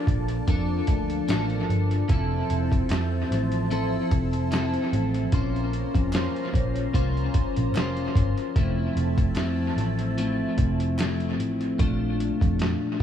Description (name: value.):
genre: indie pop, bedroom pop.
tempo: 74 BPM.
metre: 4/4.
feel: swing 55% on 16ths.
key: F major.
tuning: A4 = 439 Hz.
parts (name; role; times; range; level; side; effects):
clean electric guitar; accompaniment; 0.0-13.0 s; Bb2 to C5; -27 LUFS; left 2 dB; analog chorus, warbly pitch drift, tape echo.
phased analog pad; sustained chords; 0.0-11.8 s; F3 to Bb5; -34 LUFS; right 1 dB; phaser, chorus.
vintage muted picked electric bass; bass; 0.1-13.0 s; F1 to F2; -27 LUFS; right 1 dB; none.
lo-fi sampler-style drum kit; drums; 0.1-13.0 s; hi-hat, kick drum, snare drum; -26 LUFS; equal; tape echo.
group handclap; percussion; 1.3-11.2 s; none; -46 LUFS; right 6 dB; none.
room: light reverb.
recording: echo-heavy mix.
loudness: -22 LUFS.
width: side -9 dB against mid.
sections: 0.0-13.0 A section.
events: none.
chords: 0.0 Bbmaj7; 2.1 Fmaj7; 5.3 Bbmadd9; 8.6 Fmaj7; 11.8 Bbmaj7.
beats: 0.48 1.28 | 2.09 2.90 3.71 4.52 | 5.33 6.13 6.94 7.75 | 8.56 9.37 10.18 10.98 | 11.79 12.60.